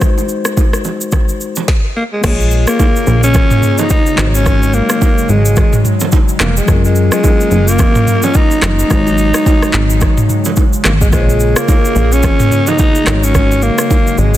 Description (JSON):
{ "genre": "afrobeats", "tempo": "108 BPM", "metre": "4/4", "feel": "swing 58% on 16ths", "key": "unclear", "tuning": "A4 = 440 Hz", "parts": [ { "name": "mellow tine electric piano", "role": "accompaniment", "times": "0.0-14.4 s", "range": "Gb3 to Db5", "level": "-21 LUFS", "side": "left 6 dB", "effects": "none" }, { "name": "afro-pop drum kit", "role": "drums", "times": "0.0-14.4 s", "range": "crash cymbal, handclaps, kick drum, rim click, shaker, snare drum, toms", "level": "-13 LUFS", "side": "equal", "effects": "overdrive" }, { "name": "congas and bongos", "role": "percussion", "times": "0.0-14.1 s", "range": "none", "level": "-22 LUFS", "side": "right 7 dB", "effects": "none" }, { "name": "breathy alto saxophone", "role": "melody", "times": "2.0-14.4 s", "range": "Ab3 to Eb4", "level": "-16 LUFS", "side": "equal", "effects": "digital delay" }, { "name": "airy breathy pad", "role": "sustained chords", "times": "2.7-14.4 s", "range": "Db3 to Ab4", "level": "-22 LUFS", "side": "right 2 dB", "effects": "chorus" }, { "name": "plucky analog bass", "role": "bass", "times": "2.2-14.4 s", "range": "F1 to Bb1", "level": "-12 LUFS", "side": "equal", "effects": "none" } ], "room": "digital ambience", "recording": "dense, heavily limited modern master", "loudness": "-9 LUFS", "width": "side -13 dB against mid", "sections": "0.0-2.2 A section; 2.2-14.4 B section", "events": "none", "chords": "0.0 Ab7; 2.2 Bbm7; 4.2 Ab7sus4; 6.7 Gbmaj7; 8.9 Ab7sus4; 11.1 Bbm7; 13.1 Ab7sus4", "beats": "| 0.01 0.57 1.13 1.68 | 2.24 2.79 3.35 3.90 | 4.46 5.01 5.57 6.13 | 6.68 7.24 7.79 8.35 | 8.90 9.46 10.02 10.57 | 11.13 11.68 12.24 12.79 | 13.35 13.90" }